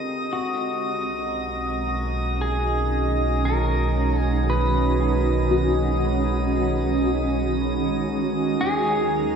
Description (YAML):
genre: ambient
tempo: 58 BPM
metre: 4/4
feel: straight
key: unclear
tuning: A4 = 440 Hz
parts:
  - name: shimmering ambient pad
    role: sustained chords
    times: 0.0-9.4 s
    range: D3 to Bb5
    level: -25 LUFS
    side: right 2 dB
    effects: chorus, built-in reverb, shimmer reverb
  - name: felt-muted upright piano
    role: arpeggios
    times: 0.0-8.6 s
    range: F#4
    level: -31 LUFS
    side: left 4 dB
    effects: shimmer reverb, analog delay
  - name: round analog bass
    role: bass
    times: 0.0-9.4 s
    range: Ab1 to Eb2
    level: -25 LUFS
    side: right 1 dB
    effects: none
  - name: bowed-like drone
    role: drone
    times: 0.0-9.4 s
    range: Ab3 to Ab4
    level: -35 LUFS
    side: right 3 dB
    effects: built-in reverb
  - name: drifting glass-harmonics texture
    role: texture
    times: 0.0-9.4 s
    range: Bb4 to Eb6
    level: -30 LUFS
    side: left 2 dB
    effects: chorus, built-in reverb, shimmer reverb
  - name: pedal steel guitar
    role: melody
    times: 0.3-9.4 s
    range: F#4 to B4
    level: -28 LUFS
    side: equal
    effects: shimmer reverb, analog delay
room: wet lush hall reverb, RT60 2.7 s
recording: dreamy mix soaked in reverb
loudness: -20 LUFS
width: side -6 dB against mid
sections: 0.0-9.4 A section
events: fade-in on ambient pad 0.0-9.4; fade-in on synth drone 0.0-9.4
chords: 0.3 B; 8.6 Ebm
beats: | 0.34 1.37 2.40 3.44 | 4.47 5.51 6.54 7.58 | 8.61